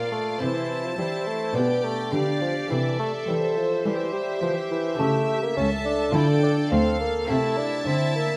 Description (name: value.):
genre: classical, baroque-style concerto movement with solo episodes.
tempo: 105 BPM.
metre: 4/4.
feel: straight.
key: unclear.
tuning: A4 = 440 Hz.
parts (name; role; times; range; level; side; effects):
dark bassoon; melody; 0.0-8.4 s; E3 to E4; -29 LUFS; equal; none.
rich chamber violin section; melody; 0.0-8.4 s; E5 to A5; -38 LUFS; equal; none.
rich symphonic violin section; second line; 0.0-8.4 s; C5 to F5; -34 LUFS; equal; none.
lute; accompaniment; 0.0-8.4 s; D2 to F4; -34 LUFS; equal; none.
rich chamber viola section; accompaniment; 0.0-8.4 s; E4 to A4; -32 LUFS; equal; none.
warm chamber cello section; bass; 0.0-8.4 s; C#2 to G3; -30 LUFS; equal; none.
room: wet recital hall reverb, RT60 1.6 s.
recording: none.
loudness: -24 LUFS.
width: mono.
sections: 0.0-8.4 A section.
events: none.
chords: 0.4 C; 1.6 G/B; 2.7 C; 5.0 A/C#; 6.1 Dm; 7.3 Am/C.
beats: | 0.41 0.98 1.56 2.13 | 2.71 3.28 3.85 4.43 | 5.00 5.57 6.14 6.72 | 7.29 7.87.